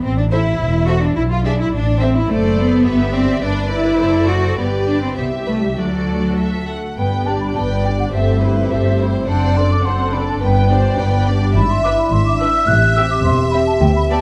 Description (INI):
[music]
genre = quick classical-period movement for symphony orchestra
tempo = 106 BPM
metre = 2/4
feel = rubato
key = G major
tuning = A4 = 440 Hz
[part]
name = clear studio cello section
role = bass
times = 0.0-14.2 s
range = D2 to F#4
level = -21 LUFS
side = equal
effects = none
[part]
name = rich chamber double bass section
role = bass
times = 0.0-14.2 s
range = E1 to D2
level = -21 LUFS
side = equal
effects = none
[part]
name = clear studio violin section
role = melody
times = 0.3-14.2 s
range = C5 to G5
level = -31 LUFS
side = equal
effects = none
[part]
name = warm studio violin section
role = second line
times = 0.3-14.2 s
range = A4 to E5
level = -27 LUFS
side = equal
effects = none
[part]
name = warm studio viola section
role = accompaniment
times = 0.3-14.2 s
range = B3 to C5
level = -28 LUFS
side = equal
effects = none
[part]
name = mellow hollow concert flute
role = second line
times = 7.0-14.2 s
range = E5 to F#6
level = -23 LUFS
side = equal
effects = none
[part]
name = dark French horn section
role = sustained chords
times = 7.0-14.2 s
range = G3 to G4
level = -25 LUFS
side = equal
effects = none
[sound]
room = moderate recital hall reverb, RT60 1.5 s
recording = dark, warm production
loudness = -16 LUFS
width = mono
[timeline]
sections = 0.0-7.0 A section; 7.0-14.2 B section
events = none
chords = 0.0 A5; 1.2 E7/B; 1.7 Am; 2.3 D7/F#; 2.9 G; 3.4 D7/G; 4.6 G; 5.2 Cmaj7; 5.8 D; 7.0 G; 8.1 Am7/G; 9.3 D7/F#; 10.4 G; 11.6 E7/G#; 12.7 Am7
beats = | 0.04 0.60 | 1.16 1.73 | 2.29 2.86 | 3.43 4.00 | 4.58 5.16 | 5.77 6.38 | 6.98 7.57 | 8.14 8.71 | 9.28 9.85 | 10.42 10.98 | 11.55 12.12 | 12.68 13.25 | 13.82